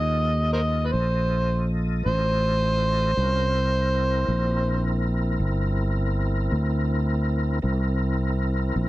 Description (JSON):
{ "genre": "slow blues", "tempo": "54 BPM (dotted quarters)", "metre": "12/8", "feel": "straight", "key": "C mixolydian", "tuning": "A4 = 440 Hz", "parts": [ { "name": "overdriven harmonica", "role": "melody", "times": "0.0-5.0 s", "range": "Bb4 to Eb5", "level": "-25 LUFS", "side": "right 1 dB", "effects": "slapback echo" }, { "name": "tonewheel organ", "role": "sustained chords", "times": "0.0-8.9 s", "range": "C4 to Eb5", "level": "-31 LUFS", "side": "equal", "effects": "slow rotary speaker, overdrive, chorus vibrato" }, { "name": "fretless electric bass", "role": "bass", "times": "0.0-8.9 s", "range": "G1 to Eb2", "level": "-23 LUFS", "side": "equal", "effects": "analog chorus" } ], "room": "little or no reverb", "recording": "dry, close 1970s-style studio recording", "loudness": "-21 LUFS", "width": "side -16 dB against mid", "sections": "0.0-8.9 A section", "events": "none", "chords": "0.0 F7; 3.2 C7" }